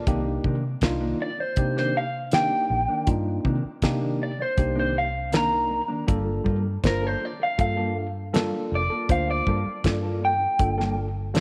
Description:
straight-eighth soul blues; 80 BPM; 4/4; straight; G minor; A4 = 439 Hz
tine electric piano; accompaniment; 0.0-11.4 s; Bb3 to C5; -33 LUFS; equal; overdrive
mellow electric guitar; stabs; 0.0-11.4 s; C3 to A4; -35 LUFS; equal; spring reverb
vintage muted fingered electric bass; bass; 0.1-11.4 s; F1 to C3; -31 LUFS; equal
damped 70s drum kit; drums; 0.1-11.4 s; hi-hat, kick drum, snare drum; -27 LUFS; equal
electric guitar through a small old amp; melody; 1.2-11.0 s; Bb4 to Bb5; -28 LUFS; equal
moderate echo chamber reverb, RT60 2.1 s; -25 LUFS; mono
0.0-11.4 A section
0.1 Cm9; 6.1 Gm9
| 0.07 0.82 1.57 2.33 | 3.08 3.83 4.58 5.33 | 6.09 6.84 7.59 8.35 | 9.10 9.85 10.60 11.36

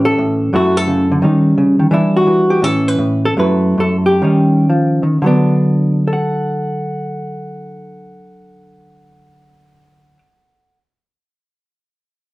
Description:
solo jazz; 113-174 BPM; 4/4; swing 65% on 8ths, rubato; D major; A4 = 440 Hz
hollow-body jazz guitar; solo; 0.0-10.8 s; F#2 to F#5; -12 LUFS; equal
wet studio reverb, RT60 0.6 s; heard from further back in the room; -12 LUFS; side -19 dB against mid
0.0-5.2 A section; 5.2-9.3 B section
slowing down 1.9-5.2
0.0 A7; 0.5 F#m7; 1.2 Eb7; 1.9 Em7; 2.6 A; 3.4 F#m7; 4.2 Eb7; 5.2 D6
0.17 | 0.53 0.87 1.22 1.57 | 1.92 2.26 2.62 2.99 | 3.38 3.78 4.21 4.69 | 5.21 5.73 6.24 6.74 | 7.24 7.74 8.23 8.73

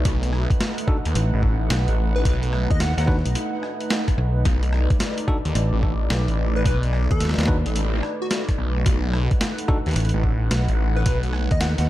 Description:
glitch hop; 109 BPM; 4/4; swing 64% on 16ths; A4 = 440 Hz
dark analog pad; sustained chords; 0.0-11.9 s; A3 to F#5; -30 LUFS; right 1 dB; chorus, vintage 12-bit sampler grit, sidechain pumping
phased detuned saw bass; bass; 0.0-11.5 s; A1 to D#2; -21 LUFS; equal; phaser
boom bap sampler-style drum kit; drums; 0.1-11.9 s; hi-hat, rim click, snare drum; -28 LUFS; equal; tape echo
electronic kick drum; drums; 0.1-11.6 s; -22 LUFS; equal
bell-like tine electric piano; stabs; 0.9-9.8 s; D4 to B4; -32 LUFS; equal; sidechain pumping, tape echo
fingered electric bass; bass; 1.2-11.9 s; A1 to D#2; -21 LUFS; equal
plucky unison lead; melody; 2.2-3.0, 6.6-11.8 s; F#4 to F#5; -31 LUFS; left 1 dB; vintage 12-bit sampler grit, tape echo
little or no reverb; echo-heavy mix; -19 LUFS; side -15 dB against mid
0.0-11.9 A section
0.0 B7#9
| 0.05 0.60 1.15 1.70 | 2.25 2.81 3.36 3.91 | 4.46 5.01 5.56 6.11 | 6.66 7.21 7.76 8.31 | 8.86 9.41 9.96 10.51 | 11.06 11.61

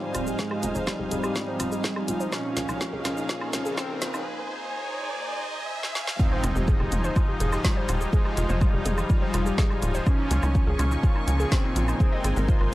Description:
melodic techno; 124 BPM; 4/4; straight; F minor; A4 = 440 Hz
analog synth brass; melody; 0.0-12.7 s; G3 to F4; -33 LUFS; equal; chorus, sidechain pumping, tape echo
clear studio string section; sustained chords; 0.0-12.7 s; Db3 to Db6; -35 LUFS; equal; sidechain pumping
warbly dusty pluck; arpeggios; 0.0-12.7 s; Db4 to Eb5; -34 LUFS; equal; chorus, sidechain pumping, analog delay
brassy analog pad; stabs; 0.0-12.7 s; Ab2 to Eb4; -33 LUFS; left 1 dB; chorus, sidechain pumping, analog delay
riser and impact; sound effects; 2.2-8.1 s; -37 LUFS; equal
ethereal airy pad; texture; 0.0-12.7 s; Bb3 to Ab5; -38 LUFS; right 1 dB; ensemble chorus, built-in reverb, phaser, sidechain pumping
tight sequencer bass; bass; 0.1-12.7 s; Eb1 to Db2; -27 LUFS; equal; sidechain pumping
deep house drum kit; drums; 0.1-12.7 s; hi-hat, shaker, snare drum, toms, woodblock; -32 LUFS; equal; high-pass filter on toms, high-pass filter on snare, high-pass filter on perc, high-pass filter on hats
electronic kick drum; drums; 0.4-12.6 s; -23 LUFS; equal; high-pass filter on kick
digital ambience; dry, gritty hardware recording, high-pass filter; -23 LUFS; side -17 dB against mid
0.0-6.2 A section; 6.2-12.7 B section
build-up 0.0-6.2; drum fill 0.0-4.3, 5.8-6.2; filter sweep on synth arpeggio sound 0.0-6.2; filter sweep on analog synth pad 0.0-6.2; filter sweep 0.0-6.2; riser 2.2-6.2; break 4.3-6.2; drop 6.2-12.7; impact 6.2-8.1
0.0 Fm7; 2.3 Db6; 4.3 Ab; 6.2 Fm7; 10.1 Db6; 12.0 Ab
| 0.39 0.87 1.36 1.84 | 2.33 2.81 3.29 3.78 | 4.26 4.74 5.23 5.71 | 6.20 6.68 7.16 7.65 | 8.13 8.62 9.10 9.58 | 10.07 10.55 11.03 11.52 | 12.00 12.49

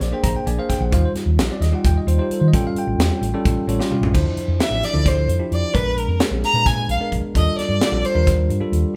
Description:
electric jazz fusion; 262 BPM (eighths); 7/8; straight; D minor; A4 = 442 Hz
bell-like tine electric piano; accompaniment; 0.0-9.0 s; F3 to Bb5; -26 LUFS; equal
hollow-body short-scale fingered electric bass; bass; 0.0-8.8 s; A1 to Eb3; -22 LUFS; equal
tight funk drum kit; drums; 0.0-8.8 s; crash cymbal, hi-hat, kick drum, snare drum, toms; -24 LUFS; equal
clear violin; melody; 4.6-8.3 s; Bb4 to Bb5; -24 LUFS; equal
light reverb; band playing live in one room; -19 LUFS; mono
0.0-4.1 A section; 4.1-9.0 A section
tine electric piano fill 3.4-4.1; drum fill 3.8-4.1; violin solo 4.1-9.0
0.0 Bb9; 0.9 Eb69; 2.5 A7b13; 4.1 Dm9; 5.7 Bb7b9; 7.3 Ebmaj9#11
0.01 0.24 0.47 0.69 | 0.93 1.15 1.38 1.61 1.84 2.07 2.30 | 2.53 2.76 2.99 3.22 3.45 3.68 3.91 | 4.14 4.37 4.59 4.83 5.05 5.28 5.51 | 5.74 5.97 6.20 6.43 6.66 6.89 7.12 | 7.35 7.58 7.81 8.04 8.27 8.50 8.73 | 8.96

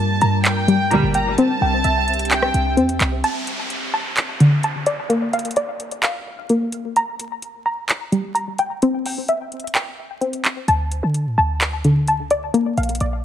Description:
hip hop, trap; 129 BPM; 4/4; half-time; D minor; A4 = 440 Hz
warm studio violin section; second line; 0.0-2.7 s; G5 to Bb5; -22 LUFS; right 1 dB; ping-pong delay
glassy FM pad; sustained chords; 0.0-3.2 s; G3 to E5; -27 LUFS; left 1 dB; ensemble chorus, built-in reverb
warbly dusty pluck; arpeggios; 0.0-13.2 s; D3 to Bb5; -19 LUFS; left 1 dB; chorus, ping-pong delay
short 808-style bass; bass; 0.0-3.2, 10.7-13.2 s; G1 to D3; -22 LUFS; equal
trap drum kit; drums; 0.2-13.1 s; handclaps, hi-hat, rim click; -22 LUFS; right 1 dB; vintage 12-bit sampler grit
dark studio string section; stabs; 0.9-1.1 s; D2 to G3; -21 LUFS; right 2 dB; ping-pong delay
downlifter; sound effects; 3.2-7.0 s; -30 LUFS; right 1 dB
light reverb; vinyl crackle; -17 LUFS; side -10 dB against mid
0.0-3.2 A section; 3.2-13.2 B section
break 3.2-10.7
0.0 Gm; 1.4 C; 3.2 D5; 5.1 Bb; 7.0 Gm; 8.8 C; 10.7 D5; 12.5 Bb
0.45 0.91 | 1.38 1.84 2.31 2.77 | 3.24 3.70 4.17 4.63 | 5.10 5.57 6.03 6.50 | 6.96 7.42 7.89 8.36 | 8.82 9.29 9.75 10.22 | 10.68 11.15 11.61 12.08 | 12.54 13.01

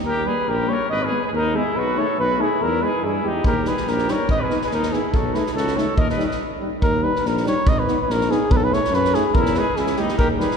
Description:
balkan folk, Balkan brass band; 142 BPM; 2/4; swing 54% on 16ths; Eb phrygian dominant; A4 = 440 Hz
mellow tuba; bass; 0.0-10.4 s; Ab1 to G2; -25 LUFS; equal
mellow flugelhorn; melody; 0.1-10.6 s; G4 to Eb5; -22 LUFS; equal
warm trumpet; second line; 0.1-6.4, 9.4-10.6 s; Eb4 to Cb5; -29 LUFS; left 1 dB
mellow French horn; accompaniment; 0.3-10.5 s; Bb3 to E4; -29 LUFS; left 4 dB
warm euphonium; accompaniment; 0.3-10.5 s; G3 to Cb4; -30 LUFS; right 4 dB
unplugged drum kit; percussion; 3.4-10.6 s; kick drum, snare drum; -24 LUFS; equal
wet church reverb, RT60 3.5 s; recorded in a church or concert hall; -18 LUFS; side -6 dB against mid
0.1-6.8 A section; 6.8-10.6 A section
break 6.4-6.8
0.1 Eb; 0.9 Abm; 1.7 B7; 2.6 E; 3.4 Eb; 4.3 Abm; 5.1 B7; 6.0 Eb; 7.7 Abm; 8.5 B7; 9.4 E
| 0.06 0.48 | 0.90 1.33 | 1.75 2.17 | 2.60 3.02 | 3.44 3.87 | 4.29 4.71 | 5.14 5.56 | 5.98 6.41 | 6.83 7.25 | 7.67 8.09 | 8.52 8.94 | 9.36 9.78 | 10.20

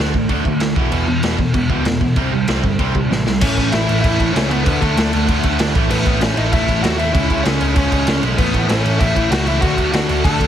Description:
punk rock; 193 BPM; 4/4; straight; A4 = 442 Hz
distorted electric guitar; riff; 0.0-10.5 s; E2 to D4; -22 LUFS; left 7 dB; distortion
distorted electric guitar; riff; 0.0-10.5 s; E2 to D4; -22 LUFS; right 11 dB; overdrive
picked electric bass; bass; 0.0-10.5 s; E1 to D#2; -20 LUFS; equal
raw garage drum kit; drums; 0.1-10.5 s; crash cymbal, kick drum, snare drum; -18 LUFS; equal
overdriven semi-hollow guitar; melody; 3.4-10.5 s; A3 to A5; -21 LUFS; left 3 dB
light reverb; heavily compressed radio sound, multiband compression; -14 LUFS; side -10 dB against mid
0.0-3.4 A section; 3.4-10.5 B section
drum fill 3.1-3.4
0.0 D5; 0.8 E5; 2.2 C5; 3.4 A; 4.7 D5; 5.8 A; 7.2 C#m; 8.4 A; 9.6 D
0.30 0.61 | 0.92 1.23 1.55 1.86 | 2.17 2.48 2.79 3.11 | 3.42 3.73 4.04 4.35 | 4.66 4.97 5.29 5.60 | 5.91 6.22 6.53 6.84 | 7.15 7.46 7.77 8.08 | 8.39 8.70 9.01 9.32 | 9.63 9.94 10.25

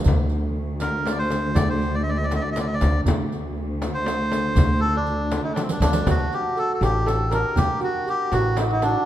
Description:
Persian modal ensemble; 80 BPM (dotted quarters); 6/8; straight; D dastgah homayun; A4 = 439 Hz
rich symphonic cello section; drone; 0.0-6.1 s; D2; -27 LUFS; equal
riq; percussion; 0.0-8.9 s; -32 LUFS; right 3 dB
upright bass; bass; 0.1-8.9 s; A1 to D2; -24 LUFS; equal
frame drum; percussion; 0.1-8.9 s; -29 LUFS; left 3 dB
tombak; percussion; 0.1-8.9 s; -29 LUFS; right 2 dB
melodica; melody; 0.8-9.1 s; C4 to Eb5+45c; -26 LUFS; equal
santur; second line; 5.8-9.1 s; D4 to Bb4; -24 LUFS; right 2 dB
wet recital hall reverb, RT60 1.8 s; dark, warm production; -20 LUFS; side -12 dB against mid
0.0-6.1 A section; 6.1-9.1 B section
drum fill 5.6-6.1
| 0.06 0.81 | 1.56 2.32 | 3.07 3.82 | 4.57 5.32 | 6.07 6.82 | 7.57 8.32

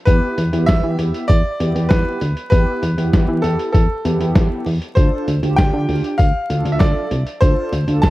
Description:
synth-pop; 98 BPM; 4/4; straight; A4 = 440 Hz
bright grand piano; melody; 0.1-8.1 s; A4 to A5; -22 LUFS; equal; tape echo
mellow synth brass; accompaniment; 0.1-8.1 s; B3 to A4; -24 LUFS; right 1 dB; chorus
solid FM bass; bass; 0.1-8.1 s; C2 to E3; -19 LUFS; equal
lo-fi sampler-style drum kit; drums; 0.1-8.1 s; hi-hat, kick drum, snare drum; -16 LUFS; equal
light reverb; dark, warm production, vinyl crackle; -15 LUFS; side -17 dB against mid
0.0-8.1 A section
0.1 Em; 5.0 Dm7
| 0.07 0.68 1.29 1.91 | 2.52 3.13 3.74 4.36 | 4.97 5.58 6.19 6.81 | 7.42 8.03

